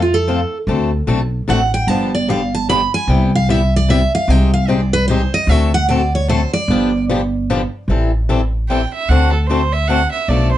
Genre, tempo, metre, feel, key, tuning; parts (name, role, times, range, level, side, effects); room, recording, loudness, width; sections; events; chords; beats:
acoustic string swing (jazz manouche); 150 BPM; 3/4; swing 63% on 8ths; A4 = 440 Hz
picked steel-string acoustic guitar; melody; 0.0-7.0 s; F4 to B5; -18 LUFS; right 2 dB
upright bass; bass; 0.0-10.6 s; G1 to F2; -16 LUFS; equal
picked swing-style acoustic guitar; accompaniment; 0.3-10.5 s; B2 to A4; -19 LUFS; left 4 dB
warm violin; second line; 8.7-10.6 s; A4 to G5; -19 LUFS; right 5 dB
light reverb; dark, warm production, nothing above 10.9 kHz; -13 LUFS; side -13 dB against mid
0.0-7.9 A section; 7.9-10.6 A section
steel-string acoustic guitar solo 0.0-7.9; violin solo 7.9-10.6
0.0 F; 0.7 D7; 1.9 G7; 3.1 Cmaj7; 4.3 Abmaj7/C; 5.5 D7; 6.7 G7; 7.9 Am7; 9.1 D7
0.28 | 0.68 1.08 1.48 | 1.88 2.28 2.68 | 3.08 3.48 3.88 | 4.28 4.68 5.08 | 5.48 5.88 6.28 | 6.68 7.08 7.48 | 7.88 8.28 8.68 | 9.08 9.48 9.88 | 10.28